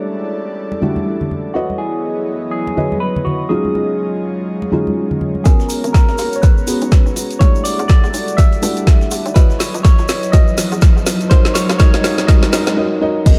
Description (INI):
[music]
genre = deep house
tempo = 123 BPM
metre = 4/4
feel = swing 58% on 16ths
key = G# minor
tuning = A4 = 440 Hz
[part]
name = barky tine electric piano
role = melody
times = 0.0-12.7 s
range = F#4 to E5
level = -25 LUFS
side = equal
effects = overdrive, phaser, low-pass filter, dub echo
[part]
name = airy breathy pad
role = sustained chords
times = 0.0-13.4 s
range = F#3 to A#5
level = -29 LUFS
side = equal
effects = chorus, vintage 12-bit sampler grit, sidechain pumping
[part]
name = felt-muted upright piano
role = stabs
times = 0.0-13.4 s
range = F#3 to D#5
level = -24 LUFS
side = equal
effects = sidechain pumping, low-pass filter, tape echo
[part]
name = deep dark ambient pad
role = texture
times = 0.0-12.8 s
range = F#3 to F#5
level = -30 LUFS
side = equal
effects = none
[part]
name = congas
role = percussion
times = 0.7-5.4 s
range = none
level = -25 LUFS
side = equal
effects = none
[part]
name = hollow knocking FM bass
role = bass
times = 5.5-13.4 s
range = D#1 to G2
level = -28 LUFS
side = equal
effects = sidechain pumping, high-pass filter
[part]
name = breakbeat sampler-style drum kit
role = drums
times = 5.5-13.4 s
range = hi-hat, snare drum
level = -37 LUFS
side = equal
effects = none
[part]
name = deep house drum kit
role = drums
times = 5.5-13.4 s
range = crash cymbal, hi-hat, snare drum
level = -24 LUFS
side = equal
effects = low-pass filter on snare, low-pass filter on hats, low-pass filter on cymbals, low-pass filter on room
[part]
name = electronic kick drum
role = drums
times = 5.5-13.4 s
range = none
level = -12 LUFS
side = equal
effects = none
[part]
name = tube shaker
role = percussion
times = 5.5-13.4 s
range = none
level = -31 LUFS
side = equal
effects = none
[part]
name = riser and impact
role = sound effects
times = 9.2-13.4 s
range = none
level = -30 LUFS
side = equal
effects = none
[part]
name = thumb-piano-like synth pluck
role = melody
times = 13.3-13.4 s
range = D#5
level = -25 LUFS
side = equal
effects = chorus, phaser
[sound]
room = light reverb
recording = dark, warm production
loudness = -15 LUFS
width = mono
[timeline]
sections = 0.0-5.5 A section; 5.5-13.3 B section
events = build-up 5.5-13.3; drum fill 5.5-12.8; filter sweep on felt piano 5.5-13.3; filter sweep on tine electric piano 5.5-13.3; break 12.8-13.3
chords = 0.0 Em11; 1.6 C#m11; 3.5 D#m11; 5.5 G#m11; 7.4 Em11; 9.4 C#m11; 11.3 D#m11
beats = 0.09 0.58 1.07 | 1.55 2.04 2.53 3.02 | 3.50 3.99 4.48 4.97 | 5.46 5.94 6.43 6.92 | 7.41 7.89 8.38 8.87 | 9.36 9.85 10.33 10.82 | 11.31 11.80 12.29 12.77 | 13.26